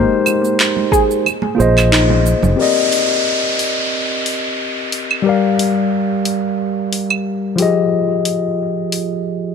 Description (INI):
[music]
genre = sunset chillout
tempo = 90 BPM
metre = 4/4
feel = straight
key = C minor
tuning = A4 = 441 Hz
[part]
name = mellow tine electric piano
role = accompaniment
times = 0.0-9.5 s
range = F3 to F5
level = -16 LUFS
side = moving between left 6 dB and right 6 dB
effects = overdrive, auto-pan, tape echo
[part]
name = soft round pluck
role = arpeggios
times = 0.0-2.2 s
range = Bb3 to Ab4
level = -20 LUFS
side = equal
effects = analog chorus, tape echo
[part]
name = fretless electric bass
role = bass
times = 0.0-2.5 s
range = F1 to Bb1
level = -15 LUFS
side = equal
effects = wide subtle chorus
[part]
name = deep house drum kit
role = drums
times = 0.3-9.1 s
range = cabasa, claves, handclaps, hi-hat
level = -19 LUFS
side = right 2 dB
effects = none
[part]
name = congas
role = percussion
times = 0.8-2.6 s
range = none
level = -24 LUFS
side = right 6 dB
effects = none
[part]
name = electronic kick drum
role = drums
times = 0.9-1.1 s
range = none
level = -20 LUFS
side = right 1 dB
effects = none
[part]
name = downlifter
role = sound effects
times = 2.6-7.9 s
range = none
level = -21 LUFS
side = equal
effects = none
[sound]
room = light reverb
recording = none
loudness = -14 LUFS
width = side -6 dB against mid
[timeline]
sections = 0.0-2.6 A section; 2.6-9.5 B section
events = filter sweep on synth pluck 0.0-2.6; kick drops out 1.3-2.6; band accent 1.9-2.3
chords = 0.0 Abmaj9; 1.3 Bb9sus4; 2.6 Cm9; 5.3 Gm7; 7.6 Fm9